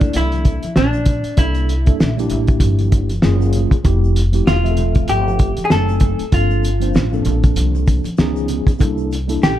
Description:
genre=hip hop, jazz-hop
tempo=97 BPM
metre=4/4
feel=swing 58% on 16ths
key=unclear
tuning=A4 = 437 Hz
part: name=vintage hollow-body jazz guitar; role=melody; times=0.0-9.6 s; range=D4 to A4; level=-21 LUFS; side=left 1 dB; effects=none
part: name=mellow tine electric piano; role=accompaniment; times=0.0-9.5 s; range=F3 to Ab5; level=-22 LUFS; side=equal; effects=medium stereo tremolo
part: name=upright bass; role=bass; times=0.0-9.6 s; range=E1 to D2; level=-18 LUFS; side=equal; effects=none
part: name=cloth-damped thuddy drum kit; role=drums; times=0.0-9.6 s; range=hi-hat, kick drum, snare drum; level=-17 LUFS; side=equal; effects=none
part: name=tube shaker and congas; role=percussion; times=0.0-9.6 s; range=none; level=-32 LUFS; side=left 2 dB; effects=none
room=little or no reverb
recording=dark, warm production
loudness=-14 LUFS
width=side -12 dB against mid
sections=0.0-9.6 A section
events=none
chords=0.0 C13; 3.2 F#maj7; 3.9 Fmaj7; 5.7 F#dim7; 6.3 Gm11; 8.2 C#9; 8.8 C13

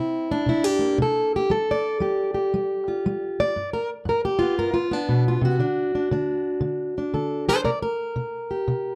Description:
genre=acoustic country blues, solo or duo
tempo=117 BPM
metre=4/4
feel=swing 65% on 8ths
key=unclear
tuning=A4 = 438 Hz
part: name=fingerpicked plugged-in steel-string acoustic guitar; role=solo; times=0.0-8.9 s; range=G2 to D5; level=-24 LUFS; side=equal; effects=none
room=moderate small room reverb, RT60 0.5 s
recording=none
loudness=-24 LUFS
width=mono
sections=0.0-8.9 A section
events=none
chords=0.0 C7; 1.5 G7; 5.6 D; 7.6 C5

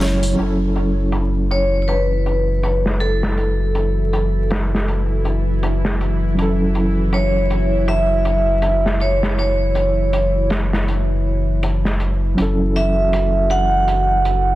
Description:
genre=trip hop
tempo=80 BPM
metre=4/4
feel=swing 59% on 16ths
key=F# minor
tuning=A4 = 439 Hz
part: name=reed electric piano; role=accompaniment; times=0.0-14.6 s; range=F#3 to C#5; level=-23 LUFS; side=right 1 dB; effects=fast tremolo, harmonic tremolo, tape echo
part: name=dark analog pad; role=sustained chords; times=0.0-14.6 s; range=C#4 to F#4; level=-31 LUFS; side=equal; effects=none
part: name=warm sub bass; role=bass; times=0.0-14.6 s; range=F#1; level=-19 LUFS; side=equal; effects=none
part: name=crunchy breakbeat drum kit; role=drums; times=0.0-14.5 s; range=hi-hat, snare drum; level=-26 LUFS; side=equal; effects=low-pass filter on kick, low-pass filter on hats, low-pass filter on snare, low-pass filter on room
part: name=bowed-like drone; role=texture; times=1.4-14.6 s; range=E3 to A4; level=-28 LUFS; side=left 1 dB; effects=built-in reverb
part: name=vibraphone with hard mallets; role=melody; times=1.5-14.6 s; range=A4 to F#5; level=-20 LUFS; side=right 1 dB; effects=tape echo
room=small room reverb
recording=dense, heavily limited modern master, vinyl crackle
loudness=-16 LUFS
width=side -16 dB against mid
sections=0.4-14.6 A section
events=none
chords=0.4 F#m7

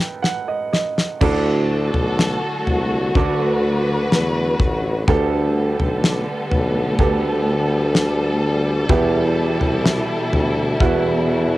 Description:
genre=pop ballad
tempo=63 BPM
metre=4/4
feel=straight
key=unclear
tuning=A4 = 439 Hz
part: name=clear upright piano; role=accompaniment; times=0.0-11.6 s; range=B1 to B5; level=-24 LUFS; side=right 5 dB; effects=cassette tape
part: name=damped 70s drum kit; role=drums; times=0.2-11.0 s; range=crash cymbal, kick drum, snare drum, toms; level=-19 LUFS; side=left 1 dB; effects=cassette tape
part: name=warm studio string section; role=sustained chords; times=1.2-11.6 s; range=B2 to B4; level=-22 LUFS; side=left 1 dB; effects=cassette tape
part: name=warm tuba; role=bass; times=1.2-11.6 s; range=A1 to E2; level=-20 LUFS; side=left 1 dB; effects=none
room=light reverb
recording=home recording on cassette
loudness=-16 LUFS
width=side -17 dB against mid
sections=0.0-1.2 A section; 1.2-11.6 B section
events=upright piano fill 0.0-1.2; drum fill 0.0-1.2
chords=0.0 B7; 1.2 D; 5.1 Gadd9; 8.9 Em

